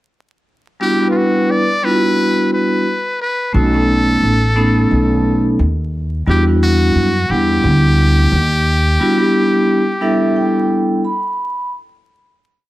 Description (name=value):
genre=hip hop, jazz-hop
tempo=88 BPM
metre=4/4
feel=swing 57% on 16ths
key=E dorian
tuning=A4 = 440 Hz
part: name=trumpet with metal mute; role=melody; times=0.8-11.0 s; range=F4 to D5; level=-18 LUFS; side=left 1 dB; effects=none
part: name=vibraphone with hard mallets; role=accompaniment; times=0.8-11.7 s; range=G3 to B5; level=-15 LUFS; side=equal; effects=none
part: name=upright bass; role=bass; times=3.5-9.0 s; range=A1 to F#2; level=-15 LUFS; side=equal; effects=none
room=light reverb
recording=dark, warm production, vinyl crackle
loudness=-12 LUFS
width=side -16 dB against mid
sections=0.8-11.7 A section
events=vibraphone fill 9.7-11.7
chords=0.8 Em7; 3.5 B7; 6.3 Em7